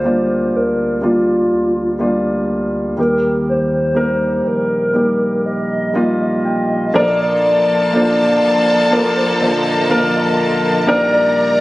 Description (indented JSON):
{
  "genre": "pop ballad",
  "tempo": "61 BPM",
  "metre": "4/4",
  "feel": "straight",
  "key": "Bb major",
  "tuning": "A4 = 445 Hz",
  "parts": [
    { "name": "hollow clarinet-like synth lead", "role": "melody", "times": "0.0-11.6 s", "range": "F4 to Eb5", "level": "-17 LUFS", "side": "equal", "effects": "chorus" },
    { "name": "warm concert grand piano", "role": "accompaniment", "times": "0.0-11.6 s", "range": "Bb2 to G5", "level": "-16 LUFS", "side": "equal", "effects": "none" },
    { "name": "warm sub bass", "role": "bass", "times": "0.0-11.6 s", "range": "F1 to Eb2", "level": "-29 LUFS", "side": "equal", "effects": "none" },
    { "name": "warm studio violin section", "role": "second line", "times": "6.9-11.6 s", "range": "A4 to Bb5", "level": "-21 LUFS", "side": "left 1 dB", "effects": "digital delay" },
    { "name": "warm studio string section", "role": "sustained chords", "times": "7.0-11.6 s", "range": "D3 to D5", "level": "-23 LUFS", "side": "left 1 dB", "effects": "none" }
  ],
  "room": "light reverb, small room ambience",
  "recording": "recorded on a phone in the room, studio reverb, compression",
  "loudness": "-13 LUFS",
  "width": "side -18 dB against mid",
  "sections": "0.0-6.9 A section; 6.9-11.6 B section",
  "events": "grand piano fill 5.4-6.9",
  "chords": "0.0 Gm7/D; 3.0 Eb; 6.9 Bbmaj7; 10.9 Ebmaj7/Bb",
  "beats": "0.05 1.03 2.00 | 2.98 3.96 4.95 5.95 | 6.95 7.94 8.92 9.90 | 10.88"
}